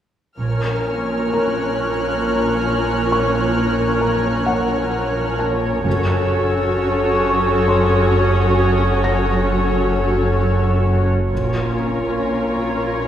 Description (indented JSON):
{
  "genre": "cinematic",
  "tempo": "66 BPM",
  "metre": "3/4",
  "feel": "straight",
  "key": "Bb harmonic minor",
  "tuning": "A4 = 439 Hz",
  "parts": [
    { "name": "muted symphonic violin section", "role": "second line", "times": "0.4-13.1 s", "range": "A4 to Db5", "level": "-23 LUFS", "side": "left 2 dB", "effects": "none" },
    { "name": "muted symphonic viola section", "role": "accompaniment", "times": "0.4-13.1 s", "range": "F3 to Gb4", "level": "-22 LUFS", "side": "equal", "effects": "none" },
    { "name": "glass harmonica", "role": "sustained chords", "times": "0.4-13.1 s", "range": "Gb4 to Gb5", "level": "-25 LUFS", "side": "equal", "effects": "none" },
    { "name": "muted symphonic cello section", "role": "bass", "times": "0.4-13.1 s", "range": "Gb2 to Bb2", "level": "-21 LUFS", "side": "right 1 dB", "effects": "none" },
    { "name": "muted symphonic double bass section", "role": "bass", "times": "0.4-1.3, 5.9-6.7, 11.3-12.2 s", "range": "Gb1 to Bb1", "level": "-24 LUFS", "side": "right 1 dB", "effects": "none" },
    { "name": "deep rumbling drone", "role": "drone", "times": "1.3-13.1 s", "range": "Gb1 to Bb1", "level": "-27 LUFS", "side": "equal", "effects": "built-in reverb" },
    { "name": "muted symphonic violin section", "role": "texture", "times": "0.4-10.8 s", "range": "Db6 to Gb6", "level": "-30 LUFS", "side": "equal", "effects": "none" },
    { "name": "felt-muted upright piano", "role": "texture", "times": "1.3-13.1 s", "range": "Bb4 to Bb6", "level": "-28 LUFS", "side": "left 2 dB", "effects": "none" }
  ],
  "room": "wet recital hall reverb, RT60 1.4 s",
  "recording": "recorded in a church or concert hall",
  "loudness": "-16 LUFS",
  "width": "side -10 dB against mid",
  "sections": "0.4-13.1 A section",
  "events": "none",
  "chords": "0.4 Bbm; 5.9 Gbm; 11.3 Bbm"
}